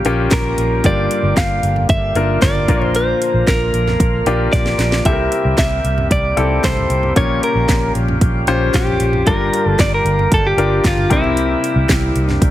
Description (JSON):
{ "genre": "piano-driven pop", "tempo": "114 BPM", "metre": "4/4", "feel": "straight", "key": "unclear", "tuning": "A4 = 440 Hz", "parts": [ { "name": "direct-recorded clean electric guitar", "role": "melody", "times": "0.0-12.5 s", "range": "E4 to F5", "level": "-19 LUFS", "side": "right 1 dB", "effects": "none" }, { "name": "clear concert grand piano", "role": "accompaniment", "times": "0.0-12.5 s", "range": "G2 to C5", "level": "-20 LUFS", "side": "left 4 dB", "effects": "none" }, { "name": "overdriven tonewheel organ", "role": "sustained chords", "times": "0.0-12.5 s", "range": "C3 to Bb4", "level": "-26 LUFS", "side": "equal", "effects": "slow rotary speaker" }, { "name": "vintage muted fingered electric bass", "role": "bass", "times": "0.0-12.5 s", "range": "G1 to C2", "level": "-19 LUFS", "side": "equal", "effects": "none" }, { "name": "house drum kit", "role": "drums", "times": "0.0-12.5 s", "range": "handclaps, hi-hat, kick drum, snare drum, toms", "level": "-18 LUFS", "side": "equal", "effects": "none" } ], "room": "light reverb, digital ambience", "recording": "heavily compressed radio sound", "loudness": "-13 LUFS", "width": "side -13 dB against mid", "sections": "0.0-12.5 A section", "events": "drum fill 4.5-5.1", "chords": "0.0 Bbm6; 0.8 Gm7; 2.7 Bb; 5.1 C7; 7.2 Bbm6; 9.3 Gm7; 11.1 C7" }